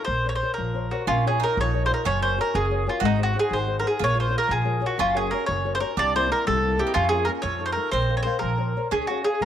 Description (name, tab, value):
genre	italian folk, Italian serenade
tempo	122 BPM (dotted quarters)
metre	6/8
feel	rubato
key	Bb minor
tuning	A4 = 442 Hz
part	mandolin	melody	0.0-9.4 s	Eb4 to D5	-24 LUFS	equal	slapback echo
part	nylon-string guitar	accompaniment	0.0-9.4 s	C3 to F5	-30 LUFS	left 10 dB	none
part	upright bass	bass	0.1-9.4 s	Gb1 to F2	-27 LUFS	right 1 dB	none
part	bowl-back mandolin	second line	1.1-9.4 s	A3 to Gb4	-31 LUFS	right 13 dB	none
room	moderate spring reverb, RT60 1.6 s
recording	1960s-style stereo with parts hard left and right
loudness	-21 LUFS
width	side -10 dB against mid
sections	0.0-1.1 A section; 1.1-8.9 A section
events	none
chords	0.1 Bbmadd9; 1.1 Bbm; 2.1 Gb; 3.0 Ab; 4.0 Bbm; 5.0 Gb; 6.0 C7; 7.0 Bbm/F; 7.4 F7; 7.9 Bbmadd9; 8.9 Db